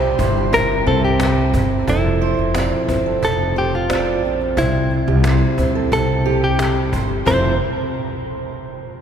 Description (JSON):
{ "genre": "acoustic pop", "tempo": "89 BPM", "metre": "4/4", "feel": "straight", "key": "F major", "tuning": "A4 = 440 Hz", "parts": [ { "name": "direct-recorded clean electric guitar", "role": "melody", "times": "0.0-7.6 s", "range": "E4 to C5", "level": "-22 LUFS", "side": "equal", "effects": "none" }, { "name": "picked steel-string acoustic guitar", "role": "accompaniment", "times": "0.0-7.5 s", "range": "C3 to A4", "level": "-21 LUFS", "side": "right 1 dB", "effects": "none" }, { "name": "glassy FM pad", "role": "sustained chords", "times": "0.0-1.8 s", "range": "G4 to C6", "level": "-36 LUFS", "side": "equal", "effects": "none" }, { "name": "upright bass", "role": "bass", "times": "0.0-7.6 s", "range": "F1 to D2", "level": "-20 LUFS", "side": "equal", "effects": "none" }, { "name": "fingerpicked steel-string acoustic guitar", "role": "arpeggios", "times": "0.2-7.6 s", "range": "G4 to E5", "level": "-27 LUFS", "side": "right 7 dB", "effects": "none" }, { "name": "cajon", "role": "drums", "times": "0.2-7.4 s", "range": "none", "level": "-26 LUFS", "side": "equal", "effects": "none" } ], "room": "wet cathedral reverb, RT60 5.8 s", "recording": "recorded in a church or concert hall", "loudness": "-15 LUFS", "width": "side -8 dB against mid", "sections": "0.0-1.9 A section; 1.9-7.3 B section; 7.3-9.0 C section", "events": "none", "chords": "0.0 C; 1.9 Fmaj7; 4.6 C; 7.3 Fmaj7" }